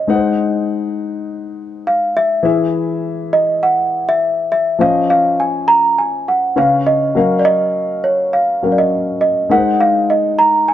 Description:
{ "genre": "soul", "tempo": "102 BPM", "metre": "4/4", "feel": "swing 54% on 16ths", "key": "unclear", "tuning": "A4 = 441 Hz", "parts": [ { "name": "worn celesta", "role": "melody", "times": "0.0-10.7 s", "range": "Db5 to Bb5", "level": "-14 LUFS", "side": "right 1 dB", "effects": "none" }, { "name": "warm grand piano", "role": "accompaniment", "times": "0.0-10.7 s", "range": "Db3 to Gb5", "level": "-18 LUFS", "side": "left 4 dB", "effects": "none" } ], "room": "light reverb", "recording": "dark, warm production", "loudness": "-13 LUFS", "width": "side -11 dB against mid", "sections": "0.0-10.7 A section", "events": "none", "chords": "0.1 Ab7; 2.4 E; 4.8 Dbmaj7/F; 6.6 Db7; 7.2 Gbmaj7; 9.5 Ab7", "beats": "| 0.09 0.68 1.27 1.86 | 2.45 3.04 3.62 4.21 | 4.80 5.39 5.98 6.57 | 7.16 7.75 8.33 8.92 | 9.51 10.10 10.68" }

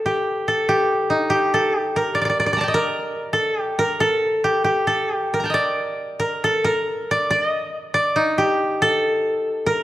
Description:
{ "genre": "japanese traditional, Japanese chamber music", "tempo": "70 BPM", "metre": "2/4", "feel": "uneven beats, rubato", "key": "unclear", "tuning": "A4 = 440 Hz", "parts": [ { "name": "koto", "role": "solo", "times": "0.0-9.8 s", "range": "Eb4 to Bb5", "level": "-18 LUFS", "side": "equal", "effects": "none" } ], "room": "moderate scoring stage reverb, RT60 1.8 s", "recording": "dark, warm production", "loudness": "-18 LUFS", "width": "side -14 dB against mid", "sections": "0.0-9.8 A section", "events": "none", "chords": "none", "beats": "| 0.46 1.30 | 2.13 2.95 | 3.80 4.68 | 5.56 6.45 | 7.32 8.16 | 9.01" }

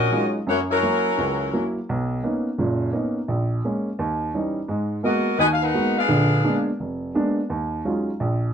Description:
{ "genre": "jazz", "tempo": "171 BPM", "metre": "4/4", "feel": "swing 65% on 8ths", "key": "Eb minor", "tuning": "A4 = 440 Hz", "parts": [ { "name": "mellow saxophone section", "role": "melody", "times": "0.0-1.7, 5.0-6.6 s", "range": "Gb3 to Ab5", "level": "-21 LUFS", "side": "left 2 dB", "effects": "none" }, { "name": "warm upright piano", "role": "accompaniment", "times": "0.0-8.5 s", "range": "F1 to Gb4", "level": "-22 LUFS", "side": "right 1 dB", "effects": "none" } ], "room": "wet studio reverb, RT60 0.6 s", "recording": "dark, warm production", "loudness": "-20 LUFS", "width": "side -7 dB against mid", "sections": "0.0-8.5 A section", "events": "none", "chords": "0.5 Gb7; 1.9 Bmaj9; 3.3 Bbm7; 4.0 Eb7b9; 4.7 Abm9; 6.1 Bb7b9; 7.5 Ebm11", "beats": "0.12 | 0.47 0.83 1.18 1.53 | 1.88 2.23 2.58 2.94 | 3.29 3.64 3.99 4.34 | 4.69 5.04 5.39 5.75 | 6.10 6.45 6.80 7.15 | 7.50 7.85 8.20" }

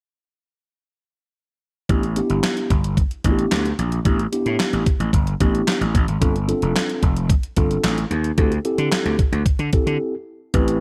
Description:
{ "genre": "early-eighties boogie funk", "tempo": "111 BPM", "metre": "4/4", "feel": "straight", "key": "A minor", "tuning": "A4 = 439 Hz", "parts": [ { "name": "mellow tine electric piano", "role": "accompaniment", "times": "1.9-10.8 s", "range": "B3 to B4", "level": "-26 LUFS", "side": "equal", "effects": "none" }, { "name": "gritty slap bass", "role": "bass", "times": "1.9-10.8 s", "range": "F1 to D3", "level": "-24 LUFS", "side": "equal", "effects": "overdrive" }, { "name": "crisp 8-bit digital drum machine", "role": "drums", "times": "1.9-10.8 s", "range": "handclaps, hi-hat, kick drum, snare drum", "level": "-22 LUFS", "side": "equal", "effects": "none" } ], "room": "little or no reverb", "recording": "none", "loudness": "-20 LUFS", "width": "mono", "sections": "1.9-10.5 A section", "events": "break 10.0-10.5", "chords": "1.9 A9sus4; 6.2 G9sus4; 8.4 D9sus4", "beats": "| 1.89 2.43 2.98 3.52 | 4.06 4.60 5.14 5.68 | 6.22 6.76 7.30 7.84 | 8.38 8.92 9.46 10.00 | 10.54" }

